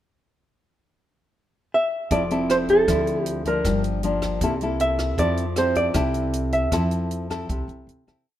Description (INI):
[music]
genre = bossa nova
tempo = 156 BPM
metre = 4/4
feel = straight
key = F major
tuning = A4 = 440 Hz
[part]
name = hollow-body jazz guitar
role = melody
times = 1.7-6.9 s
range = A4 to E5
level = -22 LUFS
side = right 1 dB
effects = none
[part]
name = nylon-string guitar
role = accompaniment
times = 2.1-8.3 s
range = G2 to A4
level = -24 LUFS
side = left 1 dB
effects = none
[part]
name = upright bass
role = bass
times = 2.1-8.2 s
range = F1 to F2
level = -28 LUFS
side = equal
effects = none
[part]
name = compact cocktail drum kit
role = drums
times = 2.1-8.2 s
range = hi-hat, kick drum, rim click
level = -30 LUFS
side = right 1 dB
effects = none
[sound]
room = moderate echo chamber reverb, RT60 1.7 s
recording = minimal, uncompressed stereo recording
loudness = -20 LUFS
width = side -12 dB against mid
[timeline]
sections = 0.6-2.1 pickup bar; 2.1-8.3 A section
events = fade-out 6.7-8.3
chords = 0.6 N.C.; 2.1 Fmaj7; 2.9 Dm9; 3.6 Gm7; 4.4 C6; 5.2 Fmaj7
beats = | 0.57 0.95 1.34 1.72 | 2.11 2.49 2.87 3.26 | 3.64 4.03 4.41 4.80 | 5.18 5.57 5.95 6.34 | 6.72 7.11 7.50 7.88